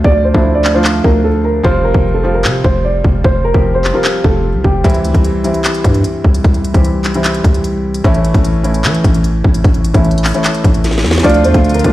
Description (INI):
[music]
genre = hip hop, trap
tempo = 150 BPM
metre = 4/4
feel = half-time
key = D minor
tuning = A4 = 440 Hz
[part]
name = dark concert grand piano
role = melody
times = 0.0-4.8, 11.2-11.9 s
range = G4 to D5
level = -16 LUFS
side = right 1 dB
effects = digital delay
[part]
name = felt-muted upright piano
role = accompaniment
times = 0.0-11.9 s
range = E3 to G4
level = -17 LUFS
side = left 1 dB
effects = none
[part]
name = growling 808-style bass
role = bass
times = 0.0-11.9 s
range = F1 to E3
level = -14 LUFS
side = equal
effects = none
[part]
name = trap drum kit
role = drums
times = 0.0-11.9 s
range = handclaps, hi-hat, kick drum, snare drum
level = -13 LUFS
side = equal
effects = none
[part]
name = muted symphonic string section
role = sustained chords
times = 11.2-11.9 s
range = D3 to F4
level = -20 LUFS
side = right 1 dB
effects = none
[sound]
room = small room ambience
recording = played on a big sound system in a bare room, stone room reverb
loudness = -10 LUFS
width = side -15 dB against mid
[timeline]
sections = 0.0-11.2 A section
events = break 0.0-4.8; hi-hats muted 3.2-4.8; drum fill 10.8-11.2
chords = 0.0 Dm; 1.6 Fsus2; 4.8 C; 8.0 A; 11.2 Dm